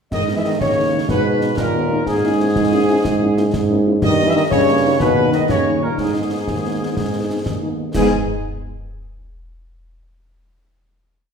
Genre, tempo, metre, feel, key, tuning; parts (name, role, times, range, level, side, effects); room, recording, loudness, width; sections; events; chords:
military-style march for wind band; 123 BPM (dotted quarters); 6/8; straight; G# minor; A4 = 439 Hz
clear trumpet section; melody; 0.1-8.1 s; G#4 to E5; -24 LUFS; left 1 dB
clear euphonium; second line; 0.1-8.1 s; G#2 to G#3; -22 LUFS; right 2 dB
hollow small flute group; second line; 0.1-8.1 s; G#4 to G#5; -24 LUFS; left 4 dB
clear tuba; bass; 0.1-8.1 s; D#2 to G#2; -20 LUFS; right 3 dB
concert snare drum, clash cymbals and concert bass drum; drums; 0.1-8.1 s; -25 LUFS; left 1 dB
mellow French horn section; accompaniment; 0.3-8.1 s; G3 to E4; -25 LUFS; left 4 dB
wet scoring stage reverb, RT60 1.4 s; heard from further back in the room; -15 LUFS; side -6 dB against mid
0.1-7.9 A section; 7.9-8.9 final chord
0.1 G#m; 2.1 A#m7b5/G#; 4.0 D#/G; 5.0 G#m/D#; 5.5 D#7; 6.0 G#m